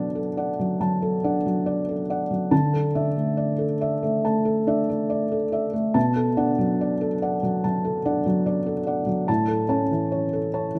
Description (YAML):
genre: neoclassical minimalist piano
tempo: 70 BPM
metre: 4/4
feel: rubato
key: B minor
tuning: A4 = 440 Hz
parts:
  - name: felt-muted upright piano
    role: solo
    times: 0.0-10.8 s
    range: A2 to A5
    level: -24 LUFS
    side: equal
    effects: none
room: moderate lush hall reverb, RT60 3.1 s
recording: rough home demo mix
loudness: -24 LUFS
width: mono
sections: 0.0-10.8 A section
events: none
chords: 0.0 Bm7; 2.5 Dsus2; 6.0 Bm7; 9.3 A